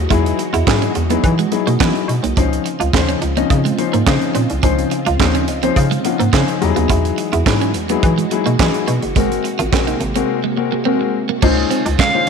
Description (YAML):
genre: early-eighties boogie funk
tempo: 106 BPM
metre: 4/4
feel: straight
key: unclear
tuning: A4 = 440 Hz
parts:
  - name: soft string machine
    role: sustained chords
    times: 0.0-12.3 s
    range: C3 to Eb5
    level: -24 LUFS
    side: equal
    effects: ensemble chorus
  - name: hollow knocking FM bass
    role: bass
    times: 0.0-12.0 s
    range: F#1 to E3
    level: -19 LUFS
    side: equal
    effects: none
  - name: warm concert grand piano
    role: accompaniment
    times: 0.1-12.2 s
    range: F3 to Bb5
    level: -19 LUFS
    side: left 12 dB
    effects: none
  - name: clean electric guitar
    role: riff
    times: 0.1-12.2 s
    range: G#3 to F4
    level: -22 LUFS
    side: right 13 dB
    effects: lush chorus
  - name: tight funk drum kit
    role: drums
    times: 0.1-12.3 s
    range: crash cymbal, handclaps, hi-hat, kick drum, snare drum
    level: -19 LUFS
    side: right 3 dB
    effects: none
  - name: high-gain lead guitar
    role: melody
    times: 12.0-12.3 s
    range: F5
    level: -14 LUFS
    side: right 1 dB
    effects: distortion, slapback echo
room: light reverb, small room ambience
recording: 1960s-style stereo with parts hard left and right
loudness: -14 LUFS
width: side -6 dB against mid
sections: 0.0-11.4 A section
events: grand piano fill 5.2-6.9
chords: 0.0 Emaj9; 2.4 Dbmaj9; 6.6 Emaj9; 9.2 Ab9; 11.4 Dbmaj9